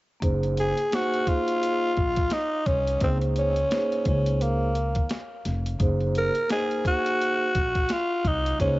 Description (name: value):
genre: hip hop, jazz-hop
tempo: 86 BPM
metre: 4/4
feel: swing 59% on 16ths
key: unclear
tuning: A4 = 439 Hz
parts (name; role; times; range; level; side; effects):
- vibraphone with soft mallets; accompaniment; 0.2-8.8 s; Bb3 to C5; -29 LUFS; right 2 dB; none
- upright bass; bass; 0.2-8.8 s; F1 to Eb2; -27 LUFS; equal; none
- boom bap sampler-style drum kit; drums; 0.2-8.8 s; hi-hat, kick drum, snare drum; -28 LUFS; equal; cassette tape
- growling tenor saxophone; melody; 0.6-8.8 s; Bb3 to Bb4; -25 LUFS; equal; tape echo
room: light reverb, small room ambience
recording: home recording on cassette, nothing above 7.8 kHz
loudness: -22 LUFS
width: side -18 dB against mid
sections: 0.2-8.8 A section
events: none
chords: 0.2 Gbmaj7; 3.0 Db5; 5.8 Gb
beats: | 0.22 0.92 1.61 2.31 | 3.01 3.71 4.40 5.10 | 5.80 6.50 7.20 7.89 | 8.59